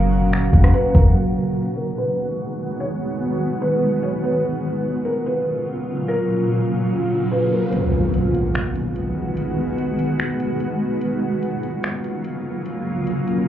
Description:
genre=hip hop, atmospheric cloud-rap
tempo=146 BPM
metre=4/4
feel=half-time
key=G# dorian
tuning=A4 = 442 Hz
part: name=felt-muted upright piano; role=melody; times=0.0-7.7 s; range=A#4 to C#5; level=-25 LUFS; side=equal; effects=low-pass filter, tape echo
part: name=granular cloud pad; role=sustained chords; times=0.0-13.5 s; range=A#2 to F#4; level=-21 LUFS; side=equal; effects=built-in reverb, sidechain pumping, low-pass filter
part: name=muted felt-like synth keys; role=arpeggios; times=0.0-1.2 s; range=C#4 to A#5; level=-30 LUFS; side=right 1 dB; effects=chorus, tape echo
part: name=clean 808-style bass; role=bass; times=0.0-1.1 s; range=F#1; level=-17 LUFS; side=equal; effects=none
part: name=smooth R&B drum kit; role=drums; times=0.1-1.0, 7.7-13.4 s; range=finger snaps, hi-hat, kick drum, rim click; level=-18 LUFS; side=equal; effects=none
part: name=riser and impact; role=sound effects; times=7.0-9.4 s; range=none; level=-26 LUFS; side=equal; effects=none
room=light reverb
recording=heard muffled through a wall, club reverb, EQ, nothing above 7.7 kHz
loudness=-18 LUFS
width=side -11 dB against mid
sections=0.0-1.2 A section; 1.2-7.7 B section; 7.7-13.5 C section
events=filter sweep 1.2-7.7; riser 7.0-7.7; kick muted 7.7-13.5; impact 7.7-9.4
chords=0.0 F#maj7; 1.2 G#m7; 4.4 F#maj7; 7.7 G#m7; 11.0 F#maj7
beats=0.33 0.74 | 1.15 1.56 1.97 2.38 | 2.79 3.21 3.62 4.03 | 4.44 4.85 5.26 5.67 | 6.08 6.49 6.90 7.32 | 7.73 8.14 8.55 8.96 | 9.37 9.78 10.19 10.60 | 11.01 11.43 11.84 12.25 | 12.66 13.07 13.48

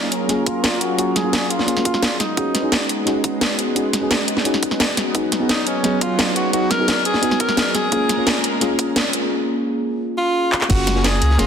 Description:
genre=liquid drum and bass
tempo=173 BPM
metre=4/4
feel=straight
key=F# major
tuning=A4 = 443 Hz
part: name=clear tenor saxophone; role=melody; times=0.0-2.9, 5.5-11.5 s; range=C#4 to A#4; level=-22 LUFS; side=equal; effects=low-pass filter, tape echo
part: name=mellow FM electric piano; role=accompaniment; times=0.0-11.5 s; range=F#3 to G#4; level=-22 LUFS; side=left 1 dB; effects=chorus, digital delay
part: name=lush unison pad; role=sustained chords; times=0.0-11.5 s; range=F#3 to A#5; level=-26 LUFS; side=right 2 dB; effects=chorus
part: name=garage drum kit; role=drums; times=0.1-11.5 s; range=crash cymbal, handclaps, hi-hat, snare drum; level=-20 LUFS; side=equal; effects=none
part: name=electronic kick drum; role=drums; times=0.5-10.8 s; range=none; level=-21 LUFS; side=equal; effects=high-pass filter on kick
part: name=warm sub bass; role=bass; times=10.7-11.5 s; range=F#1 to C#2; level=-18 LUFS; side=equal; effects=none
part: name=crunchy breakbeat drum kit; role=drums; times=10.7-11.5 s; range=hi-hat, snare drum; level=-30 LUFS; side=equal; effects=none
room=moderate scoring stage reverb, RT60 1.9 s, studio reverb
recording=dense, heavily limited modern master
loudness=-16 LUFS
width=side -7 dB against mid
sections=0.0-10.7 A section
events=build-up 0.0-10.7; filter sweep on tenor saxophone 0.0-10.7; drum fill 10.5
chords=0.0 F#maj9; 2.2 B6; 5.1 C#9sus4; 7.7 A#m7; 10.7 F#maj9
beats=0.29 0.64 | 0.99 1.33 1.68 2.03 | 2.37 2.72 3.07 3.41 | 3.76 4.11 4.45 4.80 | 5.15 5.49 5.84 6.19 | 6.54 6.88 7.23 7.58 | 7.92 8.27 8.62 8.96 | 9.31 9.66 10.00 10.35 | 10.70 11.04 11.39

